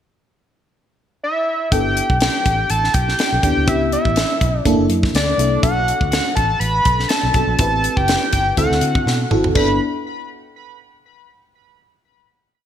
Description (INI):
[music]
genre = polished 1980s jazz-funk pop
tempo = 122 BPM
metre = 4/4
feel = swing 54% on 16ths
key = G major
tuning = A4 = 435 Hz
[part]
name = fat analog lead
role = melody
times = 1.2-9.8 s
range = D5 to B5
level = -20 LUFS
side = equal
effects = chorus
[part]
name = FM electric piano with soft pad layer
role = accompaniment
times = 1.7-9.8 s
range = A#3 to B4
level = -21 LUFS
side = equal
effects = phaser, lush chorus
[part]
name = vintage muted fingered electric bass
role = bass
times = 1.7-9.8 s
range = F#1 to D3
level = -21 LUFS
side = equal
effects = none
[part]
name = tight funk drum kit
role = drums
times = 1.7-9.7 s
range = crash cymbal, hi-hat, kick drum, snare drum, toms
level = -20 LUFS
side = equal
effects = gated reverb
[sound]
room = moderate lush hall reverb, RT60 1.7 s, small room ambience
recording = bright 1980s-style digital production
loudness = -15 LUFS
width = side -10 dB against mid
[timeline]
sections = 0.0-1.7 pickup bar; 1.7-9.6 verse; 9.6-11.5 final chord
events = drum fill 9.1-9.6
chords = 0.0 N.C.; 1.7 G69; 3.7 C#m7b5; 4.7 F#7alt; 5.6 Bm7; 7.6 Am7; 8.6 D7; 9.6 G69